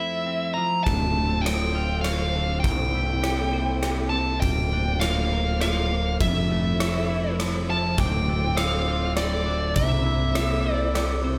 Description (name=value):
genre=post-rock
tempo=101 BPM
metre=3/4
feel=straight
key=D minor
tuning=A4 = 439 Hz
part: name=smooth overdriven lead guitar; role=melody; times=0.0-11.2 s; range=D5 to Bb5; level=-30 LUFS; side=equal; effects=none
part: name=rich studio string section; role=sustained chords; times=0.0-11.4 s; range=C3 to A4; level=-39 LUFS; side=equal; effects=none
part: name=twelve-string electric guitar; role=arpeggios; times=0.0-11.4 s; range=D2 to C5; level=-32 LUFS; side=equal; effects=none
part: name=growling picked electric bass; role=bass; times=0.9-11.4 s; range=D1 to C2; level=-28 LUFS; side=equal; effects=overdrive
part: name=big rock drum kit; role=drums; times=0.9-11.1 s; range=kick drum, ride cymbal, rim click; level=-30 LUFS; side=equal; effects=none
part: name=glockenspiel with soft plastic mallets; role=arpeggios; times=8.0-11.3 s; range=D6 to E6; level=-37 LUFS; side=equal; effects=none
room=moderate large studio reverb, RT60 0.9 s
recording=band playing live in one room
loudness=-24 LUFS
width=mono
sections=0.0-11.4 A section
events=none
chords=0.0 Fmaj7; 0.9 Dm7; 2.6 C7; 4.4 Bb/D; 6.2 Fmaj7; 8.0 Dm7; 9.8 C7